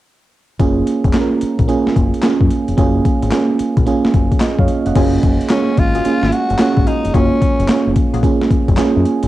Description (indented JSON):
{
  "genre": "R&B, new jack swing",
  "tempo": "110 BPM",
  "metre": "4/4",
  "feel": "swing 64% on 16ths",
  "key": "F# major",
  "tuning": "A4 = 440 Hz",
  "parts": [
    { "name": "FM electric piano", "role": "accompaniment", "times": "0.6-9.3 s", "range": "G#3 to F#5", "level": "-16 LUFS", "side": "right 4 dB", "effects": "chorus, cassette tape" },
    { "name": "deep dub fingered electric bass", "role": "bass", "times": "0.6-9.3 s", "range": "E#1 to F#2", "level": "-19 LUFS", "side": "left 1 dB", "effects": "none" },
    { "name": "boom bap sampler-style drum kit", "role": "drums", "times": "0.6-9.3 s", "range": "crash cymbal, handclaps, hi-hat, kick drum, snare drum", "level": "-16 LUFS", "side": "left 1 dB", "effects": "overdrive, cassette tape" },
    { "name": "funky polysynth comp", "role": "stabs", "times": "5.0-8.2 s", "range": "A#3 to G#4", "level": "-25 LUFS", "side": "left 7 dB", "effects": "chorus, cassette tape" },
    { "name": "growling tenor saxophone", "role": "melody", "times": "5.5-8.0 s", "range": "C#4 to F#4", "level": "-20 LUFS", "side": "left 1 dB", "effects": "cassette tape" }
  ],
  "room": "moderate studio reverb, RT60 0.6 s",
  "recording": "home recording on cassette",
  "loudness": "-12 LUFS",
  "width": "side -15 dB against mid",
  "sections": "0.6-5.0 A section; 5.0-9.3 B section",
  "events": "none",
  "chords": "0.6 F#maj9"
}